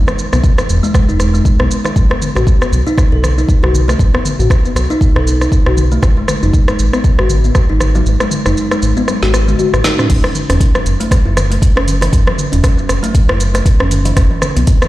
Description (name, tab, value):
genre	afro house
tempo	118 BPM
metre	4/4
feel	swing 57% on 16ths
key	F# dorian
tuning	A4 = 442 Hz
part	round analog bass	bass	0.0-14.6 s	E1 to B1	-13 LUFS	equal	sidechain pumping
part	kalimba	arpeggios	0.1-14.9 s	D#3 to A4	-18 LUFS	left 1 dB	sidechain pumping, tape echo
part	afro-pop drum kit	drums	0.1-14.9 s	crash cymbal, hi-hat, rim click, shaker, snare drum, toms	-18 LUFS	equal	none
part	electronic kick drum	drums	0.4-14.8 s	none	-12 LUFS	equal	none
room	light reverb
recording	played on a big sound system in a bare room, large studio reverb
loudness	-10 LUFS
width	side -16 dB against mid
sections	0.0-14.9 A section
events	kick drops out 8.1-10.1; drum fill 9.1-10.1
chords	0.0 E5; 2.0 B5; 6.0 G#5; 10.1 F#7(no3); 14.2 E5